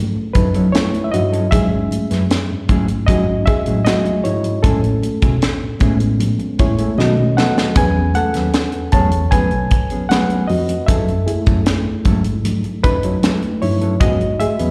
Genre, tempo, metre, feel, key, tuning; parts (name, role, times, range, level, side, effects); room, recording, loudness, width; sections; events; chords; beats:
lush 1970s-style soul; 77 BPM; 4/4; straight; E major; A4 = 440 Hz
reed electric piano; accompaniment; 0.0-14.7 s; D#3 to A5; -22 LUFS; equal; overdrive, plate reverb
tine electric piano; bass; 0.0-14.7 s; B1 to B3; -22 LUFS; equal; overdrive
mellow electric guitar; riff; 0.2-14.7 s; F#3 to B4; -26 LUFS; equal
congas; percussion; 0.2-14.6 s; -27 LUFS; equal
tight funk drum kit; drums; 0.3-14.7 s; hi-hat, kick drum, snare drum; -19 LUFS; equal
light reverb; live gig heard through the venue's PA, recital hall reverb; -16 LUFS; mono
0.0-14.7 A section
reed electric piano solo 0.0-14.7; drum fill 7.0-7.8
0.0 F#m7; 1.5 E69; 4.6 Amaj7; 7.0 B7; 7.8 E69; 10.9 F#m7; 14.0 E69
0.74 | 1.52 2.30 3.08 3.86 | 4.64 5.42 6.20 6.98 | 7.76 8.54 9.32 10.10 | 10.88 11.66 12.45 13.23 | 14.01